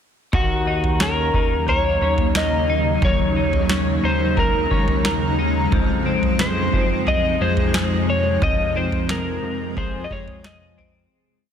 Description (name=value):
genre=dream pop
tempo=89 BPM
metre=4/4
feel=straight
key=Eb dorian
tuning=A4 = 440 Hz
part: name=electric slide guitar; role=melody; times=0.3-10.9 s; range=Gb4 to Eb5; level=-23 LUFS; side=left 3 dB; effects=tape echo
part: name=granular cloud pad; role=sustained chords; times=1.6-11.1 s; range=C3 to F4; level=-24 LUFS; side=equal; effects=built-in reverb
part: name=twelve-string electric guitar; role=arpeggios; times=0.3-11.5 s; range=F2 to Bb4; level=-25 LUFS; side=left 2 dB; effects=analog chorus, tape echo
part: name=fat analog bass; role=bass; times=0.3-11.1 s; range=Eb2 to F2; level=-25 LUFS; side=right 1 dB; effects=none
part: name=booming analog drum machine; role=drums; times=0.3-10.9 s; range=kick drum, snare drum, toms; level=-22 LUFS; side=right 1 dB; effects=overdrive
room=light reverb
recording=dense, heavily limited modern master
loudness=-17 LUFS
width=side -8 dB against mid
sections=0.3-11.1 verse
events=fade-out 8.4-11.1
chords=0.3 Ebm7; 5.7 Fm7